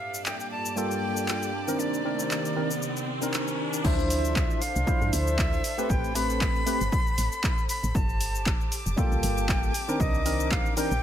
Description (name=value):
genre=deep house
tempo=117 BPM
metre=4/4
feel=swing 55% on 16ths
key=D minor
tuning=A4 = 444 Hz
part: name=breathy bright jazz flute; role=melody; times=0.0-11.0 s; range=D5 to B5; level=-32 LUFS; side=left 1 dB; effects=tape echo
part: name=warbly tape-like pad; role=sustained chords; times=0.0-3.8 s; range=G2 to A4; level=-36 LUFS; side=right 1 dB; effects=chorus, built-in reverb, sidechain pumping
part: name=riser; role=sound effects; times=1.3-3.8 s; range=none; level=-38 LUFS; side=left 1 dB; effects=none
part: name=rich chamber string section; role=texture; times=0.0-11.0 s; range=C4 to D6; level=-38 LUFS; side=equal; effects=sidechain pumping
part: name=warm studio violin section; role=texture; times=0.0-3.9 s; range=D5 to D6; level=-44 LUFS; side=left 1 dB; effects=sidechain pumping
part: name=punchy analog drum machine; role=drums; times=0.1-11.0 s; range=crash cymbal, handclaps, hi-hat, shaker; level=-33 LUFS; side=left 1 dB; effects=none
part: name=percussive organ stab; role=stabs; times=0.8-10.9 s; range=Eb3 to C5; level=-30 LUFS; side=equal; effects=analog chorus, sidechain pumping, tape echo
part: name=woody FM bass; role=bass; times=3.8-11.0 s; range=F1 to G2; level=-29 LUFS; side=equal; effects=sidechain pumping
part: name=electronic kick drum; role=drums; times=3.8-10.6 s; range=none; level=-27 LUFS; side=equal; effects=none
room=light reverb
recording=none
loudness=-24 LUFS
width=side -10 dB against mid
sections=0.0-3.8 A section; 3.8-11.0 B section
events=filter sweep on ambient pad 0.0-3.8; riser 1.3-3.8; drop 3.8-11.0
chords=0.0 Gm9; 1.5 Cm9; 3.8 Dm9; 5.6 Am9; 7.9 Gm9; 9.7 Cm9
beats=0.26 0.77 1.28 | 1.79 2.31 2.82 3.33 | 3.85 4.36 4.87 5.38 | 5.90 6.41 6.92 7.44 | 7.95 8.46 8.97 9.49 | 10.00 10.51 11.03